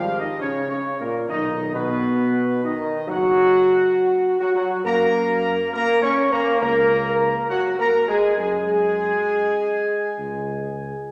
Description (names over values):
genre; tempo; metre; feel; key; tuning
classical; 67 BPM; 4/4; straight; unclear; A4 = 439 Hz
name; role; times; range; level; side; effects
dark trumpet section; melody; 0.0-11.1 s; Bb4 to Db6; -29 LUFS; equal; none
mellow French horn section; sustained chords; 0.0-11.1 s; Bb3 to Db5; -23 LUFS; equal; none
mellow trombone section; sustained chords; 0.0-11.1 s; Bb2 to Db4; -27 LUFS; equal; none
dark tuba; bass; 0.0-10.9 s; F#1 to Gb2; -36 LUFS; equal; none
room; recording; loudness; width
wet concert hall reverb, RT60 2.0 s; none; -21 LUFS; mono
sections
0.0-11.1 A section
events
none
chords
0.0 Db5; 1.3 B5; 4.9 Gbadd9